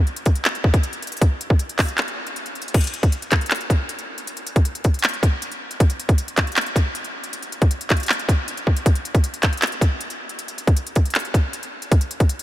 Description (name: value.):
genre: hip hop.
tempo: 157 BPM.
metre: 4/4.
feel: half-time.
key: none.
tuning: none.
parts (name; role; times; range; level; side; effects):
trap drum kit; drums; 0.1-12.4 s; crash cymbal, handclaps, hi-hat, kick drum; -18 LUFS; equal; none.
room: light reverb, digital ambience.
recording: none.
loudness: -18 LUFS.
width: side -14 dB against mid.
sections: 0.0-2.7 A section; 2.7-12.4 B section.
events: break 2.0-2.7.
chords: none.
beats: 0.07 0.45 0.83 | 1.22 1.60 1.98 2.36 | 2.74 3.13 3.51 3.89 | 4.27 4.66 5.04 5.42 | 5.80 6.18 6.57 6.95 | 7.33 7.71 8.09 8.48 | 8.86 9.24 9.62 10.01 | 10.39 10.77 11.15 11.53 | 11.92 12.30.